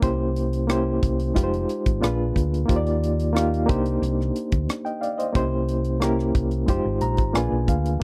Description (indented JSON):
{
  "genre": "lush 1970s-style soul",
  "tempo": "90 BPM",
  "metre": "4/4",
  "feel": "straight",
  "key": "unclear",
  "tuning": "A4 = 439 Hz",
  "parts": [
    { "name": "reed electric piano", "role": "accompaniment", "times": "0.0-8.0 s", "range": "Ab3 to Bb5", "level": "-26 LUFS", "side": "equal", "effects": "overdrive, fast tremolo" },
    { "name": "hollow-body short-scale fingered electric bass", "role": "bass", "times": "0.0-8.0 s", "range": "F1 to Eb2", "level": "-27 LUFS", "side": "equal", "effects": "none" },
    { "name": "tight funk drum kit", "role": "drums", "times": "0.0-8.0 s", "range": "hi-hat, kick drum, rim click", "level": "-26 LUFS", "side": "equal", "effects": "none" }
  ],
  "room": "little or no reverb",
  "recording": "dry, close 1970s-style studio recording",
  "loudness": "-23 LUFS",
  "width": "mono",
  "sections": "0.0-8.0 A section",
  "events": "reed electric piano fill 6.7-8.0",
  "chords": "0.0 C7b9; 1.4 Fm9; 2.0 Bb7b9; 2.7 Ebmaj9; 3.7 Cm7; 5.4 C7b9; 6.7 Fm9; 7.4 Bb7b9"
}